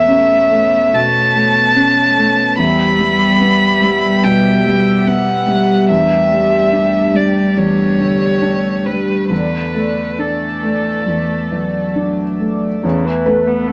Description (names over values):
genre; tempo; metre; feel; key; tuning
neoclassical piano and strings; 67-74 BPM; 4/4; rubato; unclear; A4 = 440 Hz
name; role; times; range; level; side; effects
rich violin; melody; 0.0-12.0 s; A4 to B5; -17 LUFS; equal; none
warm cello; second line; 0.0-13.7 s; D3 to A3; -22 LUFS; equal; none
felt-muted upright piano; accompaniment; 0.0-13.7 s; E2 to B4; -20 LUFS; equal; none
chorused pulse-width pad; sustained chords; 0.0-13.7 s; A3 to E5; -22 LUFS; equal; none
dark viola; accompaniment; 12.8-13.7 s; C#3 to B3; -22 LUFS; equal; none
room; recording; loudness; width
wet small room reverb, RT60 0.5 s; none; -14 LUFS; mono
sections
0.0-12.8 A section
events
none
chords
0.0 Aadd9/E; 2.6 Emadd9; 5.9 Gsus2/E; 9.3 Dsus2/E; 12.8 Aadd9/E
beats
0.09 0.95 1.76 | 2.58 3.40 4.24 5.06 | 5.89 6.73 7.57 8.43 | 9.30 10.20 11.08 11.96 | 12.84 13.69